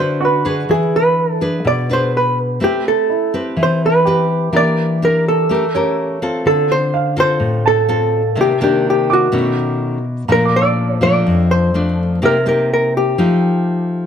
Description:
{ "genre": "bossa nova", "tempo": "125 BPM", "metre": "4/4", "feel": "straight", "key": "A minor, D minor from 6.5 s", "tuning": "A4 = 440 Hz", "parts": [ { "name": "hollow-body jazz guitar", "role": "melody", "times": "0.0-13.9 s", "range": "F#4 to D5", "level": "-16 LUFS", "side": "right 1 dB", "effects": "none" }, { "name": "nylon-string guitar", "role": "accompaniment", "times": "0.0-14.1 s", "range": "F2 to B4", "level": "-17 LUFS", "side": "left 1 dB", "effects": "none" }, { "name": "warm baby grand piano", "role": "accompaniment", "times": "0.0-12.2 s", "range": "Bb3 to E6", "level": "-23 LUFS", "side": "right 5 dB", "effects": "none" } ], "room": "moderate large studio reverb, RT60 1.3 s", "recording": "close, detailed microphones", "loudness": "-13 LUFS", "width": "side -8 dB against mid", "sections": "0.0-6.5 A section; 6.5-14.1 B section", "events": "none", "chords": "0.0 Gmaj7 (rootless); 0.7 E7; 2.6 Am9; 4.5 Em7b5; 5.5 A7b9; 6.5 Dm7; 8.4 Cm9; 9.3 B9; 10.3 Bbmaj7; 12.2 Cm7; 13.2 F9" }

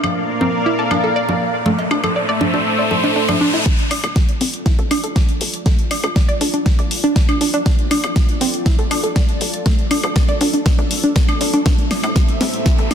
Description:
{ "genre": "progressive house", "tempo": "120 BPM", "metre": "4/4", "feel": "straight", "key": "D minor", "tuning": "A4 = 440 Hz", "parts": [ { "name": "lush unison pad", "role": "sustained chords", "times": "0.0-12.9 s", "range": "A3 to F5", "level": "-23 LUFS", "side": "equal", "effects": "chorus, phaser, sidechain pumping" }, { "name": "deep house drum kit", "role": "drums", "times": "0.0-12.9 s", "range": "hi-hat, snare drum, woodblock", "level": "-22 LUFS", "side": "left 1 dB", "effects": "sidechain pumping on perc, soft clipping on snare, sidechain pumping on hats" }, { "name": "congas, bongos and cowbell", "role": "percussion", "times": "0.0-3.6 s", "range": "none", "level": "-23 LUFS", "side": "equal", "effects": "sidechain pumping on perc" }, { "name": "riser", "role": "sound effects", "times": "1.1-3.7, 12.3-12.9 s", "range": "none", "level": "-24 LUFS", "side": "left 1 dB", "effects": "none" }, { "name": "analog pluck", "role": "arpeggios", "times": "0.4-12.9 s", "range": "A3 to D5", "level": "-20 LUFS", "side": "right 1 dB", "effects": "chorus, sidechain pumping, dub echo" }, { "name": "tight sequencer bass", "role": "bass", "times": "3.7-12.9 s", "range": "D1 to A2", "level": "-30 LUFS", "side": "equal", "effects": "sidechain pumping, high-pass filter" }, { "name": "electronic kick drum", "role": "drums", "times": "3.7-12.8 s", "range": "none", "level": "-16 LUFS", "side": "equal", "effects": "none" } ], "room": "light reverb, digital ambience", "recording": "dense, heavily limited modern master", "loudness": "-14 LUFS", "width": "side -8 dB against mid", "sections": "0.0-3.7 A section; 3.7-12.9 B section", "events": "filter sweep 0.0-3.7; riser 1.1-3.7, 12.3-12.9; build-up 3.7-12.9; drum fill 3.7-12.9", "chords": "0.0 Bb; 1.7 Am; 3.7 Dm; 11.7 Am" }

